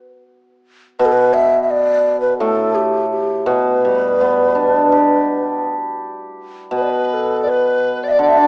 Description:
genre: chinese traditional, Chinese chamber ensemble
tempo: 84 BPM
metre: 4/4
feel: rubato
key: unclear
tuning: A4 = 440 Hz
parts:
  - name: breathy hollow low xiao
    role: melody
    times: 1.0-8.5 s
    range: G4 to E5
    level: -16 LUFS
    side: equal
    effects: none
  - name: hammered dulcimer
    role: accompaniment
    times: 1.0-8.5 s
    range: A2 to G4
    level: -16 LUFS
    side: equal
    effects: none
  - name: mellow hollow large dizi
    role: second line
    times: 6.7-8.5 s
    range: B4 to E5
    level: -19 LUFS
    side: left 1 dB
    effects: none
room: moderate recital hall reverb, RT60 1.5 s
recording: small speaker sound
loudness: -13 LUFS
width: side -27 dB against mid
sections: 0.0-8.5 A section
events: none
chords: none

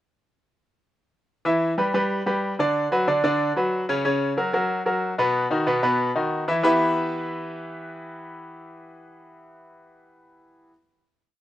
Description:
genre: latin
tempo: 185 BPM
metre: 4/4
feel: straight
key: E minor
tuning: A4 = 440 Hz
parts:
  - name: bright concert grand piano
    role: solo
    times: 1.4-10.7 s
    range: B2 to E5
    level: -21 LUFS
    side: equal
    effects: none
room: little or no reverb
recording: recorded outdoors, with no room sound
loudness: -20 LUFS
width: side -13 dB against mid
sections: 1.5-6.6 mambo (horn riffs); 6.6-9.2 final chord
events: none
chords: 1.5 Em; 2.8 Bm; 4.0 F#; 5.3 B; 6.6 Em

